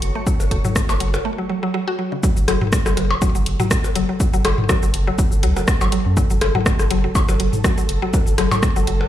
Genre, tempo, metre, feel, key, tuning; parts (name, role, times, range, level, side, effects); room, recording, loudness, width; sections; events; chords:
minimal techno; 122 BPM; 4/4; swing 55% on 16ths; F# minor; A4 = 440 Hz
saturated sub bass; bass; 0.0-9.0 s; F#1 to F#2; -21 LUFS; equal; sidechain pumping
house drum kit; drums; 0.0-9.0 s; hi-hat, rim click, shaker; -26 LUFS; equal; studio reverb
granular cloud pad; texture; 0.0-1.3 s; F#4 to C#6; -35 LUFS; left 1 dB; built-in reverb, sidechain pumping
swarming drone; texture; 0.0-9.1 s; A4; -32 LUFS; right 2 dB; built-in reverb, sidechain pumping
mallet-like synth pluck; riff; 0.2-8.9 s; C#3 to F#4; -24 LUFS; left 1 dB; chorus, phaser, sidechain pumping, digital delay
electronic kick drum; drums; 0.3-8.7 s; -20 LUFS; equal; studio reverb
minimal click drum kit; percussion; 0.4-9.1 s; percussion blips, rim click, toms; -23 LUFS; left 2 dB; overdrive, studio reverb, ping-pong delay
light reverb; played on a big sound system in a bare room, large studio reverb; -16 LUFS; side -12 dB against mid
0.0-2.2 A section; 2.2-9.1 B section
break 1.3-2.2; drop 2.2-9.1
0.0 F#m